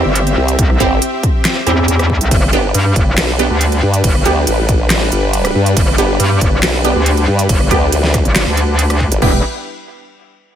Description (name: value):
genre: heavy wobble dubstep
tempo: 139 BPM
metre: 4/4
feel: half-time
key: unclear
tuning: A4 = 440 Hz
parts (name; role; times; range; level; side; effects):
- supersaw pad; sustained chords; 0.0-9.4 s; G3 to E5; -20 LUFS; equal; sidechain pumping
- formant-sweep wobble bass; bass; 0.0-9.2 s; G1 to G2; -15 LUFS; equal; chorus, overdrive
- metallic wobble bass; bass; 0.1-9.4 s; E1 to G2; -14 LUFS; equal; chorus, overdrive
- dubstep drum kit; drums; 0.2-9.3 s; crash cymbal, handclaps, hi-hat, rim click, snare drum; -19 LUFS; right 1 dB; none
- electronic kick drum; drums; 0.6-9.3 s; none; -15 LUFS; equal; none
- orchestra-hit-like synth stab; stabs; 0.8-9.4 s; B3 to G4; -19 LUFS; right 3 dB; built-in reverb, vintage 12-bit sampler grit, ping-pong delay
room: little or no reverb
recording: none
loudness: -11 LUFS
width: side -10 dB against mid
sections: 0.0-9.2 A section; 9.2-10.6 B section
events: drop 0.0-9.2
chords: 0.0 C; 2.3 G; 9.2 Em